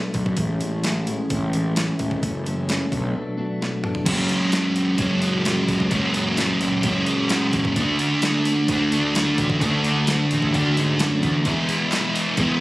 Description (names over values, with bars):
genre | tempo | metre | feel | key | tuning
indie rock | 130 BPM | 4/4 | straight | unclear | A4 = 440 Hz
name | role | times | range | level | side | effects
twelve-string electric guitar | riff | 0.0-12.6 s | F#2 to F#4 | -26 LUFS | left 2 dB | none
fuzz picked electric bass | bass | 0.1-12.6 s | E1 to G#2 | -26 LUFS | equal | overdrive
crisp 8-bit digital drum machine | drums | 0.1-12.5 s | crash cymbal, hi-hat, kick drum, snare drum, toms | -26 LUFS | equal | none
sludgy distorted guitar | riff | 4.1-12.6 s | D3 to F#4 | -20 LUFS | right 2 dB | overdrive, analog chorus
group handclap | percussion | 11.9-12.3 s | none | -33 LUFS | left 2 dB | none
room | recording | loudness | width
light reverb | recorded on a phone in the room, studio reverb, compression | -19 LUFS | side -19 dB against mid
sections
0.0-4.1 A section; 4.1-12.6 A section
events
drum fill 3.6-4.1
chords
0.4 Amaj7; 2.2 F#m7; 2.9 Bm7; 4.1 F#sus2; 7.8 D; 11.5 E